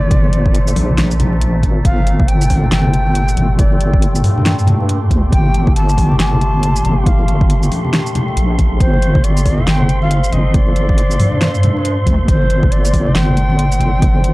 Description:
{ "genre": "deep dubstep", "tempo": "138 BPM", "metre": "4/4", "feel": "swing 60% on 16ths, half-time", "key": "G minor", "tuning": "A4 = 437 Hz", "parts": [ { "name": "mellow long shakuhachi", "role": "melody", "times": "0.0-14.3 s", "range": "C5 to A5", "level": "-23 LUFS", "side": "left 1 dB", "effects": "dub echo" }, { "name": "overtone-sweeping drone", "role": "sustained chords", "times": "0.0-14.3 s", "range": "Bb2 to C5", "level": "-23 LUFS", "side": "equal", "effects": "chorus, built-in reverb" }, { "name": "deep soft wobble bass", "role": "bass", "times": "0.0-14.3 s", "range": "G1 to G2", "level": "-14 LUFS", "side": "equal", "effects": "chorus" }, { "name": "deep house drum kit", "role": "drums", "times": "0.1-14.3 s", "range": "hi-hat, shaker, snare drum", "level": "-20 LUFS", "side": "equal", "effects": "overdrive" }, { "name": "electronic kick drum", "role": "drums", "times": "0.1-14.1 s", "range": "none", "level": "-14 LUFS", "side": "equal", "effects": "overdrive" }, { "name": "congas", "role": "percussion", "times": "0.2-14.2 s", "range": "none", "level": "-22 LUFS", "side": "left 1 dB", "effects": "none" }, { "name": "wind-like tuned noise texture", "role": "texture", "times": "2.9-14.3 s", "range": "C6", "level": "-30 LUFS", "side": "equal", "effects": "built-in reverb" } ], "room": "digital ambience", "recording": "dry, gritty hardware recording, cassette tape", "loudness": "-11 LUFS", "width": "side -20 dB against mid", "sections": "0.0-14.3 A section", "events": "none", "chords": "0.0 Gmadd9", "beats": "| 0.11 0.54 0.98 1.41 | 1.85 2.28 2.72 3.15 | 3.59 4.02 4.46 4.89 | 5.33 5.76 6.20 6.63 | 7.07 7.50 7.93 8.37 | 8.80 9.24 9.67 10.11 | 10.54 10.98 11.41 11.85 | 12.28 12.72 13.15 13.59 | 14.02" }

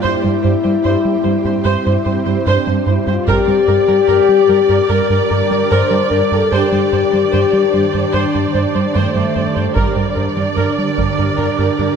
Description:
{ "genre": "cinematic, hybrid orchestral and electronic film score", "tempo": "74 BPM", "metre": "4/4", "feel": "straight", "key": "unclear", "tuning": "A4 = 440 Hz", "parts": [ { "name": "warm symphonic viola section", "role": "accompaniment", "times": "0.0-12.0 s", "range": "Bb4 to D5", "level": "-20 LUFS", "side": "right 4 dB", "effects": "none" }, { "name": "ethereal airy pad", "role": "sustained chords", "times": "0.0-12.0 s", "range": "D3 to C5", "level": "-21 LUFS", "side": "right 3 dB", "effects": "ensemble chorus, built-in reverb, tremolo" }, { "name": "mellow French horn section", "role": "sustained chords", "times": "0.0-12.0 s", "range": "G3 to C5", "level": "-16 LUFS", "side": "left 6 dB", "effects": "none" }, { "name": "rubbery square bass", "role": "riff", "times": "0.0-11.9 s", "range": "G2 to G3", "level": "-20 LUFS", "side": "equal", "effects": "none" }, { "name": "dark symphonic cello section", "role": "bass", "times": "0.0-11.9 s", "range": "G2", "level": "-21 LUFS", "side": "right 5 dB", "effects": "none" }, { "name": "taiko ensemble", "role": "drums", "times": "3.3-4.9, 9.8-11.4 s", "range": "none", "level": "-22 LUFS", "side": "right 2 dB", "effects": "none" } ], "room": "moderate scoring stage reverb, RT60 1.7 s", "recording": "none", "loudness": "-12 LUFS", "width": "side -6 dB against mid", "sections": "0.0-12.0 A section", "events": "none", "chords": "0.0 C/G; 3.3 Gm; 6.5 Cmadd9; 9.8 Gm", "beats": "| 0.03 0.84 1.65 2.46 | 3.27 4.08 4.90 5.71 | 6.52 7.33 8.14 8.95 | 9.76 10.57 11.38" }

